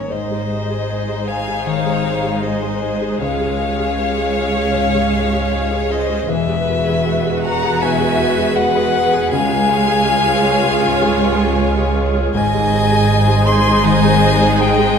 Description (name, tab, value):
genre	cinematic, emotional film score for orchestra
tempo	79 BPM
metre	4/4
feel	rubato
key	Ab major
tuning	A4 = 440 Hz
part	rich symphonic violin section	melody	0.0-15.0 s	B4 to Ab5	-24 LUFS	left 2 dB	none
part	rich violin	melody	0.0-15.0 s	Db5 to C6	-24 LUFS	left 5 dB	none
part	mellow hollow concert flute	second line	0.0-15.0 s	Db5 to C6	-22 LUFS	left 2 dB	none
part	dark baby grand piano	accompaniment	0.0-15.0 s	Db2 to Db5	-23 LUFS	right 1 dB	none
part	concert harp	arpeggios	0.0-15.0 s	Ab2 to Db6	-24 LUFS	left 6 dB	none
part	clear symphonic cello section	bass	0.0-15.0 s	Db2 to Db4	-24 LUFS	right 3 dB	none
part	rich symphonic violin section	second line	0.1-15.0 s	Ab4 to Db5	-25 LUFS	equal	none
part	rich symphonic viola section	accompaniment	0.1-15.0 s	Ab3 to F#4	-22 LUFS	right 2 dB	none
part	rich studio double bass section	bass	0.1-15.0 s	E1 to Db2	-23 LUFS	right 2 dB	none
room	wet scoring stage reverb, RT60 2.0 s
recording	minimal, uncompressed stereo recording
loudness	-14 LUFS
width	side -7 dB against mid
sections	0.1-15.0 A section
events	none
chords	0.1 Ab; 3.2 Db; 6.3 Eadd9; 9.3 Db; 12.3 Ab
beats	| 0.10 0.89 1.67 2.43 | 3.21 4.00 4.77 5.53 | 6.29 7.05 7.81 8.56 | 9.32 10.07 10.82 11.58 | 12.35 13.10 13.85 14.62